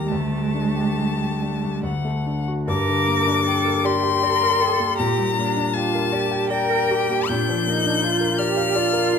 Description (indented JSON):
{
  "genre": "classical, slow romantic movement for piano trio",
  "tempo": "68-84 BPM",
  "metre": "3/4",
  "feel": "rubato",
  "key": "G minor",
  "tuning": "A4 = 439 Hz",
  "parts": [
    { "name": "clear violin", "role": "melody", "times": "0.0-9.2 s", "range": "F#5 to G6", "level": "-23 LUFS", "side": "left 7 dB", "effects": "none" },
    { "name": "rich cello", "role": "second line", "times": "0.0-9.2 s", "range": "A3 to Bb4", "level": "-24 LUFS", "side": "right 7 dB", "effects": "none" },
    { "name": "warm concert grand piano", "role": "accompaniment", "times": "0.0-9.2 s", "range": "D2 to G5", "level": "-23 LUFS", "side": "left 2 dB", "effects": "none" }
  ],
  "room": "wet recital hall reverb, RT60 1.6 s",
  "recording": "none",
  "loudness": "-19 LUFS",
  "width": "side -6 dB against mid",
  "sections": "0.0-2.7 A section; 2.7-9.2 B section",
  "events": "none",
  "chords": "0.1 Dsus4; 1.8 D; 2.7 Gm; 5.0 Gm/Bb; 7.3 Bb"
}